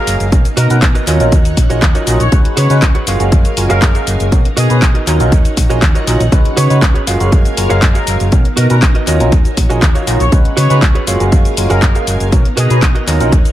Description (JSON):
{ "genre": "filtered disco house", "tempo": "120 BPM", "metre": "4/4", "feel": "straight", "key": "Eb minor", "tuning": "A4 = 440 Hz", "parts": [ { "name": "clear trumpet section", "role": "melody", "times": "0.0-13.0 s", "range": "Ab4 to Db5", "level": "-23 LUFS", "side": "left 1 dB", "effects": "sidechain pumping, dub echo" }, { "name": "barky tine electric piano", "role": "accompaniment", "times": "0.0-13.3 s", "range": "Gb3 to F5", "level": "-19 LUFS", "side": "equal", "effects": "phaser, sidechain pumping" }, { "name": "string machine, full ensemble", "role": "sustained chords", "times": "0.0-13.5 s", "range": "B3 to A#5", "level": "-23 LUFS", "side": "left 1 dB", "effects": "ensemble chorus, sidechain pumping" }, { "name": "direct-recorded clean electric guitar", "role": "riff", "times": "0.0-13.5 s", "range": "Gb4 to F5", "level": "-21 LUFS", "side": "right 5 dB", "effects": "sidechain pumping, dub echo" }, { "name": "hollow-body short-scale fingered electric bass", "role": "bass", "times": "0.1-13.4 s", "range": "Gb1 to Db3", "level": "-14 LUFS", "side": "equal", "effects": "sidechain pumping" }, { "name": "house drum kit", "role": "drums", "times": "0.1-13.5 s", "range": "handclaps, hi-hat, shaker", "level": "-20 LUFS", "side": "left 1 dB", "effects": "sidechain pumping on hats, sidechain pumping on perc, dub echo" }, { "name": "electronic kick drum", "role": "drums", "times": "0.3-13.4 s", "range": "none", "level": "-11 LUFS", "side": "equal", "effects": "none" } ], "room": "light reverb, digital ambience", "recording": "echo-heavy mix", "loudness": "-9 LUFS", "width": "side -13 dB against mid", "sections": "0.0-13.5 A section", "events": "none", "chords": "0.3 Bmaj7; 1.1 Ebm7; 2.3 Db7sus4; 3.1 Gbmaj9; 4.3 Bmaj7; 5.1 Ebm7; 6.3 Db7sus4; 7.1 Gbmaj9; 8.3 Bmaj7; 9.1 Ebm7; 10.3 Db7sus4; 11.1 Gbmaj9; 12.3 Bmaj7" }